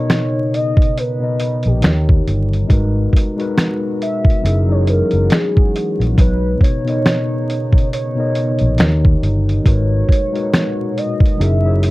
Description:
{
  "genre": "lo-fi hip hop",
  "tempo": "69 BPM",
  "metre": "4/4",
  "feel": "swing 58% on 16ths",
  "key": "B major",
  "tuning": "A4 = 435 Hz",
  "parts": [
    { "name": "warm velvety synth lead", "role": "melody", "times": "0.0-11.9 s", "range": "G4 to E5", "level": "-23 LUFS", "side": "equal", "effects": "chorus, low-pass filter" },
    { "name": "mellow tine electric piano", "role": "accompaniment", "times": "0.0-11.9 s", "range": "B2 to D#5", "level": "-20 LUFS", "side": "left 1 dB", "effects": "slow stereo tremolo, low-pass filter" },
    { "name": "warbly tape-like pad", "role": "sustained chords", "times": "0.2-11.9 s", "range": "A#2 to F#4", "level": "-28 LUFS", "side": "equal", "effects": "chorus, built-in reverb, low-pass filter" },
    { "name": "lo-fi sampler-style drum kit", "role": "drums", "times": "0.1-11.9 s", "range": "finger snaps, hi-hat, kick drum, snare drum", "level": "-14 LUFS", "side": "equal", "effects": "none" },
    { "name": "vintage muted fingered electric bass", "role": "bass", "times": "1.7-11.9 s", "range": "F#1 to D#2", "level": "-15 LUFS", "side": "equal", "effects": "none" }
  ],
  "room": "light reverb",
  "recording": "dark, warm production, vinyl crackle",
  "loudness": "-13 LUFS",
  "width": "side -19 dB against mid",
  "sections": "0.0-11.9 A section",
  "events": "none",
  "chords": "0.0 Bmaj9; 1.8 D#7; 2.7 G#m9; 4.4 F#13; 6.2 Bmaj9; 8.8 D#7; 9.7 G#m9; 11.4 F#13"
}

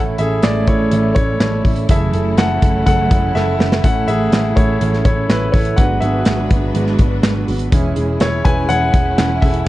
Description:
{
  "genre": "piano-driven pop",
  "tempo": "124 BPM",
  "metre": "4/4",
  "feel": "straight",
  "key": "A major",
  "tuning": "A4 = 439 Hz",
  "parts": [
    { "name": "clear baby grand piano", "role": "accompaniment", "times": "0.0-9.7 s", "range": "E3 to G#5", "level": "-19 LUFS", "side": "left 1 dB", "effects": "none" },
    { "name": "warm studio string section", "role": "sustained chords", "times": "0.0-9.7 s", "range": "F#3 to B4", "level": "-23 LUFS", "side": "left 1 dB", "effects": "none" },
    { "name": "fingerpicked steel-string acoustic guitar", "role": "riff", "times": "0.0-9.7 s", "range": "F#2 to A4", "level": "-22 LUFS", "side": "right 5 dB", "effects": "none" },
    { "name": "vintage muted picked electric bass", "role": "bass", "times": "0.0-9.6 s", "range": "E1 to A1", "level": "-20 LUFS", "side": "equal", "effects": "none" },
    { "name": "modern studio drum kit", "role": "drums", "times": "0.2-9.7 s", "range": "handclaps, hi-hat, kick drum, snare drum", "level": "-16 LUFS", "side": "equal", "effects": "none" }
  ],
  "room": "moderate small room reverb, RT60 0.6 s",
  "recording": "dark, warm production",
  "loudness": "-13 LUFS",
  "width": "side -16 dB against mid",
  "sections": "0.0-9.7 A section",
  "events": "grand piano solo 0.0-9.7; drum fill 3.4-3.8",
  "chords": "0.0 A; 1.9 F#m7; 3.8 A; 5.8 G#m7b5; 7.7 C#m/E"
}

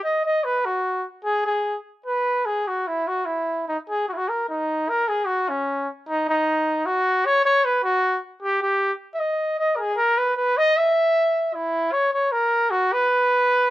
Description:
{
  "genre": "mexican folk",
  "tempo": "153 BPM",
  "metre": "3/4",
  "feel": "straight",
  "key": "B major",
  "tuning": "A4 = 441 Hz",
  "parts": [
    { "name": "warm trumpet", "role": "solo", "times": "0.0-13.7 s", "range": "C#4 to E5", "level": "-20 LUFS", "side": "equal", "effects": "none" }
  ],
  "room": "little or no reverb",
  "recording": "recorded outdoors, with no room sound",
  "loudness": "-20 LUFS",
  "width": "side -15 dB against mid",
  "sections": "0.0-4.9 A section; 4.9-13.7 A section",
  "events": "none",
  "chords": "none"
}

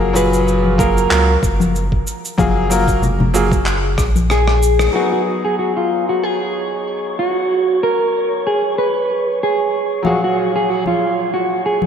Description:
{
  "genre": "sunset chillout",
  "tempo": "94 BPM",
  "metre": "4/4",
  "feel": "swing 55% on 16ths",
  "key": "G# dorian",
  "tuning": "A4 = 439 Hz",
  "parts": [
    { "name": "mellow electric guitar", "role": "melody", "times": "0.0-11.9 s", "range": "E#4 to B4", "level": "-17 LUFS", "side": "equal", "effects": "wide subtle chorus, digital delay, slapback echo" },
    { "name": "bright concert grand piano", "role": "accompaniment", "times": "0.0-11.9 s", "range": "A#2 to E#5", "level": "-20 LUFS", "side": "moving between left 3 dB and right 4 dB", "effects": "auto-pan, ping-pong delay, slapback echo" },
    { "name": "warm sub bass", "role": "bass", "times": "0.0-4.9 s", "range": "F#1 to C#2", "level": "-18 LUFS", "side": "equal", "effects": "none" },
    { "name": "electronic cabasa, handclaps and rim click", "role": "drums", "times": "0.2-4.9 s", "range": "none", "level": "-23 LUFS", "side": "equal", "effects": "none" },
    { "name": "congas", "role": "percussion", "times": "0.6-4.3, 10.0-11.9 s", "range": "none", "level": "-22 LUFS", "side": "left 3 dB", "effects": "none" },
    { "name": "electronic kick drum", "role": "drums", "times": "0.8-4.1 s", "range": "none", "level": "-19 LUFS", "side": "equal", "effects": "none" },
    { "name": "wind-like tuned noise texture", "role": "texture", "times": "5.7-11.9 s", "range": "C#5 to C#6", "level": "-27 LUFS", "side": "right 1 dB", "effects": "built-in reverb" }
  ],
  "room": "wet lush hall reverb, RT60 2.2 s",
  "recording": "big arena sound",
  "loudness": "-14 LUFS",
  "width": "side -8 dB against mid",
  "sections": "0.0-4.9 A section; 4.9-11.9 B section",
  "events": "drum fill 4.0-4.9; band accent 4.8-5.1",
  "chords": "0.0 F#maj9; 4.9 G#m7; 10.0 F#maj9"
}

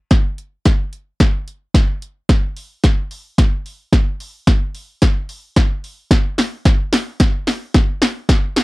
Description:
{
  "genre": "pop",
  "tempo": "110 BPM",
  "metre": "4/4",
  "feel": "straight",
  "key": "none",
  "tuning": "none",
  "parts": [
    { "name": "punchy analog drum machine", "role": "drums", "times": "0.1-8.6 s", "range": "hi-hat, kick drum, snare drum", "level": "-14 LUFS", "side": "equal", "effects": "none" }
  ],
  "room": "light reverb",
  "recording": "dry, close 1970s-style studio recording",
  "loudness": "-15 LUFS",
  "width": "side -20 dB against mid",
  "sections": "0.0-8.6 A section",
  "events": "build-up 0.0-8.6; drum fill 0.0-8.6",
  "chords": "none"
}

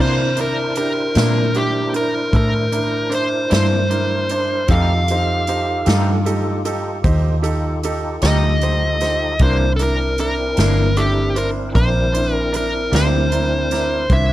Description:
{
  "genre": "slow blues",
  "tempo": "51 BPM (dotted quarters)",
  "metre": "12/8",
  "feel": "straight",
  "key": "C mixolydian",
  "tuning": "A4 = 440 Hz",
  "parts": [
    { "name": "dark smooth lead guitar", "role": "melody", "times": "0.0-14.3 s", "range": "G4 to F5", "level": "-21 LUFS", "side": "equal", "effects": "overdrive" },
    { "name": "bright grand piano", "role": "accompaniment", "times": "0.0-14.3 s", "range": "D4 to C5", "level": "-25 LUFS", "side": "right 4 dB", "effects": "none" },
    { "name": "electric guitar through a small old amp", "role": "accompaniment", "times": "0.0-13.2 s", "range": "C3 to G4", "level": "-25 LUFS", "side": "left 4 dB", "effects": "harmonic tremolo" },
    { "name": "tonewheel organ", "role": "sustained chords", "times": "0.0-14.3 s", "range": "Eb3 to Db5", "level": "-27 LUFS", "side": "equal", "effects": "slow rotary speaker, overdrive, chorus vibrato" },
    { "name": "vintage muted fingered electric bass", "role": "bass", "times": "0.0-14.3 s", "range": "G1 to C3", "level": "-19 LUFS", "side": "equal", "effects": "none" },
    { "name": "swinging big-band drum kit", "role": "drums", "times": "0.4-14.3 s", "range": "hi-hat, kick drum, snare drum", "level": "-23 LUFS", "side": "equal", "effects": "none" }
  ],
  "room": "little or no reverb",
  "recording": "dark, warm production",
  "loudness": "-15 LUFS",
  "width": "side -14 dB against mid",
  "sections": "0.0-14.3 A section",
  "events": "none",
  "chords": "0.0 C9; 4.7 F9; 9.4 C9"
}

